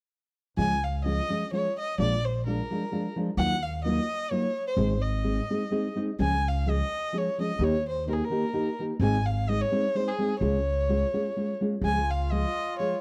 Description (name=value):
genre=mexican folk, mariachi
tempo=128 BPM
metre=3/4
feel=swing 54% on 8ths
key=Db major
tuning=A4 = 440 Hz
part: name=warm violin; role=melody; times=0.6-13.0 s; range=Ab4 to Ab5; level=-32 LUFS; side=equal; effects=none
part: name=nylon-string guitar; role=accompaniment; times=0.6-12.9 s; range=Ab2 to Ab4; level=-31 LUFS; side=equal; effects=none
part: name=upright bass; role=bass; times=0.6-12.4 s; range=Ab1 to Eb2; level=-31 LUFS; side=equal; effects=none
part: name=mellow trumpet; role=second line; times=11.8-13.0 s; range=F4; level=-39 LUFS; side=equal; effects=none
room=small room ambience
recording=dry, close 1970s-style studio recording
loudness=-28 LUFS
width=mono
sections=0.6-11.8 A section; 11.8-13.0 A section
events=none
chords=0.6 Db; 2.0 Bb7; 3.4 Ebmadd9; 4.8 Ab; 6.2 Db; 7.6 Eb; 9.0 Ab; 10.4 Db